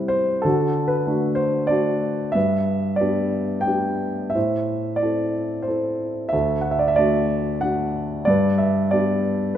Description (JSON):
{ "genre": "classical, lyrical solo piano", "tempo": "92 BPM", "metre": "3/4", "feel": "rubato", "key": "unclear", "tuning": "A4 = 440 Hz", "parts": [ { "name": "warm grand piano", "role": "solo", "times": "0.0-9.6 s", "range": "D2 to G5", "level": "-19 LUFS", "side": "equal", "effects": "none" } ], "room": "light reverb", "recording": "minimal, uncompressed stereo recording", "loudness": "-19 LUFS", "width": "side -10 dB against mid", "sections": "0.0-9.6 A section", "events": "none", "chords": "0.4 D; 2.4 G; 4.4 Am; 6.3 D; 8.3 G" }